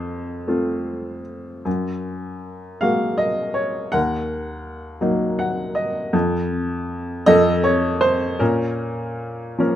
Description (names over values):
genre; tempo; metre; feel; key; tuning
classical, lyrical solo piano; 53 BPM (dotted quarters); 6/8; uneven beats, rubato; unclear; A4 = 440 Hz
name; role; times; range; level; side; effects
warm upright piano; solo; 0.0-9.8 s; Eb2 to Gb5; -19 LUFS; equal; none
room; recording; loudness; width
light reverb; close, detailed microphones; -19 LUFS; side -11 dB against mid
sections
0.0-9.8 A section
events
upright piano fill 5.0-6.1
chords
0.0 F; 1.7 Gbadd9; 3.9 Ebm; 6.1 N.C.; 7.3 F; 8.4 Bbm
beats
0.49 | 1.66 2.83 | 3.94 5.02 | 6.14 7.27 | 8.41 9.59